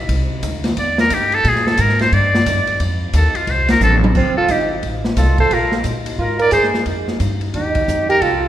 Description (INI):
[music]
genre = jazz, small-group swing and bop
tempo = 177 BPM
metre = 4/4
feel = swing 63% on 8ths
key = F mixolydian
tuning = A4 = 440 Hz
[part]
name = upright bass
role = bass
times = 0.0-8.5 s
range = F1 to Bb2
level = -19 LUFS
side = equal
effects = none
[part]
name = open jazz drum kit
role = drums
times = 0.1-8.3 s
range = crash cymbal, hi-hat, kick drum, ride cymbal, snare drum, toms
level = -21 LUFS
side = equal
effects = none
[part]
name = trumpet with metal mute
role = melody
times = 0.8-8.5 s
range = F4 to D5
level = -18 LUFS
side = equal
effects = none
[part]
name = warm alto saxophone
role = second line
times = 4.2-8.5 s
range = C4 to Bb4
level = -18 LUFS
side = right 3 dB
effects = none
[sound]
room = wet scoring stage reverb, RT60 1.7 s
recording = recorded in a church or concert hall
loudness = -14 LUFS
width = side -12 dB against mid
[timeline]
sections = 0.0-4.1 A section; 4.1-8.5 B section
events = muted trumpet solo 0.0-4.1; drum fill 3.8-4.1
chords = 0.0 Cadd9; 1.4 Bb7; 2.8 F7; 4.1 Fadd9; 5.5 Bb7(no3); 6.9 F7sus2